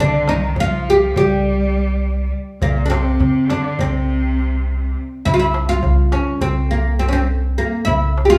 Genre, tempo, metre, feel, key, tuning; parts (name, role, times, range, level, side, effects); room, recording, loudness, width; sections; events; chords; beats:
Turkish makam ensemble; 205 BPM (eighths); 9/8; straight; C makam nihavent, C makam hicaz from 5.3 s; A4 = 440 Hz
oud; melody; 0.0-8.4 s; Bb3 to G4; -20 LUFS; equal
clear cello; second line; 0.0-5.0 s; Bb2 to G3; -25 LUFS; equal
upright bass; bass; 0.0-8.4 s; C2 to C3; -22 LUFS; equal
darbuka; percussion; 0.1-8.3 s; -27 LUFS; equal
wet large studio reverb, RT60 1.1 s; band playing live in one room, small room ambience; -18 LUFS; mono
0.0-5.3 A section; 5.3-8.4 B section
| 0.00 0.29 0.58 0.87 1.17 1.46 1.75 2.04 2.33 | 2.63 2.92 3.21 3.50 3.79 4.09 4.38 4.67 4.96 | 5.25 5.55 5.84 6.13 6.42 6.71 7.01 7.30 7.59 | 7.88 8.18